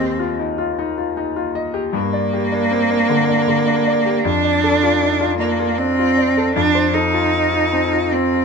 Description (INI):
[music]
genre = neoclassical piano and strings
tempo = 78 BPM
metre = 3/4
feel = rubato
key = G minor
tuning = A4 = 442 Hz
[part]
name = rich cello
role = second line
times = 0.0-8.4 s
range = Bb3 to Eb4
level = -17 LUFS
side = right 3 dB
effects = none
[part]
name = clear concert grand piano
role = accompaniment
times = 0.0-8.4 s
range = Eb2 to Eb5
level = -19 LUFS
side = left 3 dB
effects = none
[sound]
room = light reverb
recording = none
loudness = -15 LUFS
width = side -5 dB against mid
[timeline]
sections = 0.0-8.4 A section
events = none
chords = 0.0 Ebadd9; 1.9 Gm; 4.2 Dm/F; 6.6 F7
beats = 0.39 1.17 | 1.94 2.72 3.49 | 4.25 5.01 5.78 | 6.55 7.32 8.12